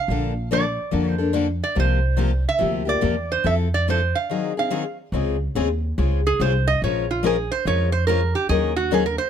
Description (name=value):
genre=acoustic string swing (jazz manouche)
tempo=143 BPM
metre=4/4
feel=swing 63% on 8ths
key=Db major from 5.1 s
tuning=A4 = 439 Hz
part: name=metal-body resonator slide guitar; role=melody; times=0.0-9.3 s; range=F4 to F5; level=-23 LUFS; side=right 5 dB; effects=none
part: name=picked steel-string acoustic guitar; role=accompaniment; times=0.1-9.0 s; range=C3 to Bb4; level=-23 LUFS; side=left 6 dB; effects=none
part: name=upright bass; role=bass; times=0.1-9.2 s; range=Bb1 to F2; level=-23 LUFS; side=right 1 dB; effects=none
room=little or no reverb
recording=close, detailed microphones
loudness=-19 LUFS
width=side -8 dB against mid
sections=0.0-5.1 A section; 5.1-9.3 B section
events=break 4.3-5.1; resonator guitar played with a steel bar solo 5.1-9.3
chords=0.1 Bbmaj7; 1.8 C7sus4; 3.5 Fmaj7; 4.3 Ab7; 5.1 Dbmaj7; 6.8 Bbm7; 8.5 Ebm7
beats=| 0.09 0.51 0.93 1.35 | 1.77 2.19 2.62 3.04 | 3.46 3.88 4.30 4.72 | 5.14 5.56 5.98 6.40 | 6.82 7.24 7.66 8.08 | 8.50 8.92